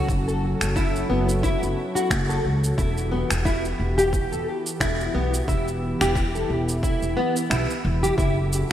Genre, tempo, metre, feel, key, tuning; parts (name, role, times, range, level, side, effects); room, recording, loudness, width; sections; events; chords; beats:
organic downtempo; 89 BPM; 4/4; swing 56% on 16ths; E dorian; A4 = 440 Hz
warm analog pad; sustained chords; 0.0-8.7 s; E3 to A4; -29 LUFS; equal; chorus, sidechain pumping
nylon-string guitar; arpeggios; 0.0-8.4 s; B3 to A4; -26 LUFS; left 1 dB; ensemble chorus, digital delay
upright bass; bass; 0.1-8.6 s; E1 to C#2; -25 LUFS; equal; tube saturation, sidechain pumping
electronic kick drum; drums; 0.1-8.3 s; -26 LUFS; equal
electronic shaker and finger snaps; drums; 0.1-8.7 s; -30 LUFS; right 1 dB; gated reverb
moderate lush hall reverb, RT60 2.8 s; bright 1980s-style digital production; -21 LUFS; side -11 dB against mid
0.0-8.2 A section
kick drops out 7.5-8.2
0.0 F#m7; 2.8 Emadd9; 8.2 F#m7
| 0.09 0.77 1.44 2.11 | 2.79 3.46 4.14 4.81 | 5.49 6.16 6.83 7.51 | 8.18